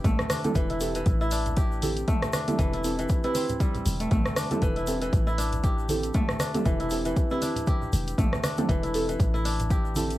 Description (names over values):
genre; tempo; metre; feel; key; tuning
afro house; 118 BPM; 4/4; swing 57% on 16ths; A minor; A4 = 440 Hz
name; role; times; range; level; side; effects
kora; arpeggios; 0.0-10.2 s; E3 to G4; -30 LUFS; left 1 dB; sidechain pumping, cassette tape, tape echo
deep mellow chord stab; stabs; 0.0-10.2 s; C4 to B4; -32 LUFS; right 2 dB; wide subtle chorus, sidechain pumping, cassette tape, tape echo
warm 808-style bass; bass; 0.0-10.2 s; E1 to A1; -29 LUFS; equal; sidechain pumping
deep house drum kit; drums; 0.0-10.2 s; hi-hat, rim click, toms; -32 LUFS; equal; cassette tape
electronic kick drum; drums; 0.0-9.8 s; none; -25 LUFS; equal; cassette tape
tube shaker; percussion; 0.0-10.2 s; none; -43 LUFS; left 2 dB; none
congas; percussion; 0.2-10.1 s; none; -34 LUFS; right 1 dB; none
room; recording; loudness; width
light reverb; home recording on cassette; -23 LUFS; side -16 dB against mid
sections
0.0-10.2 A section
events
none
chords
0.0 Am7